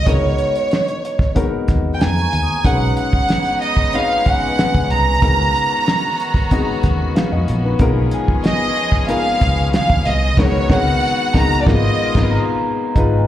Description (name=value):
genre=lush 1970s-style soul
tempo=93 BPM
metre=4/4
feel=straight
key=unclear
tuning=A4 = 440 Hz
part: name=warm studio violin section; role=melody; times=0.0-12.3 s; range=C#5 to A#5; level=-19 LUFS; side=right 2 dB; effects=slapback echo
part: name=warm grand piano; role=accompaniment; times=0.0-13.3 s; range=G#3 to E#5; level=-22 LUFS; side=left 5 dB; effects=slapback echo
part: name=fingered electric bass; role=bass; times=0.1-13.3 s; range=G#1 to E#2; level=-18 LUFS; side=equal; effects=none
part: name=cloth-damped thuddy drum kit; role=drums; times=0.1-13.1 s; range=crash cymbal, hi-hat, kick drum, snare drum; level=-18 LUFS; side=equal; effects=none
part: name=vibraphone with soft mallets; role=texture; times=0.1-13.3 s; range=B4 to D#6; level=-28 LUFS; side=right 1 dB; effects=none
part: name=warm studio string section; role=sustained chords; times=2.6-12.9 s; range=B2 to G#4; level=-26 LUFS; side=left 1 dB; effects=none
room=small room reverb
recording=live gig heard through the venue's PA, club reverb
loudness=-14 LUFS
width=side -12 dB against mid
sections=0.0-13.0 A section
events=band accent 10.4-13.0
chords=0.1 C#13sus4; 2.6 B69; 5.2 C#13sus4; 7.8 G#m69/B; 10.4 C#13sus4; 11.7 G#m69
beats=| 0.07 0.71 1.35 2.00 | 2.64 3.29 3.93 4.58 | 5.22 5.87 6.51 7.16 | 7.80 8.44 9.09 9.73 | 10.38 11.02 11.67 12.31 | 12.96